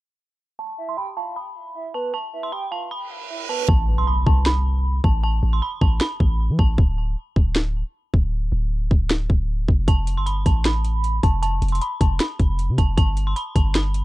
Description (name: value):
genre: hip hop, trap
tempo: 155 BPM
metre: 4/4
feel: half-time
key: A minor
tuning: A4 = 440 Hz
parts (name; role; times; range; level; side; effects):
- dark detuned synth bell; melody; 0.6-6.8, 9.9-14.0 s; A5 to C6; -28 LUFS; right 2 dB; chorus, phaser, low-pass filter
- hollow clarinet-like synth lead; second line; 0.8-3.7 s; B4 to G5; -30 LUFS; right 3 dB; chorus, ping-pong delay
- reverse cymbal and impact; sound effects; 3.1-5.2 s; none; -32 LUFS; right 1 dB; none
- warm 808-style bass; bass; 3.7-14.0 s; D1 to E3; -21 LUFS; equal; none
- trap drum kit; drums; 3.7-14.0 s; hi-hat, kick drum, snare drum; -18 LUFS; equal; none
room: little or no reverb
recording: dark, warm production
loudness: -19 LUFS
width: side -18 dB against mid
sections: 0.6-3.7 A section; 3.7-14.0 B section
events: filter sweep on synth bell 0.6-3.7; reverse cymbal 3.1-3.7; hi-hats muted 3.7-9.9; impact 3.7-5.2; break 6.8-9.9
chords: 0.6 N.C.; 3.7 Asus2; 6.8 N.C.; 9.9 F; 13.0 G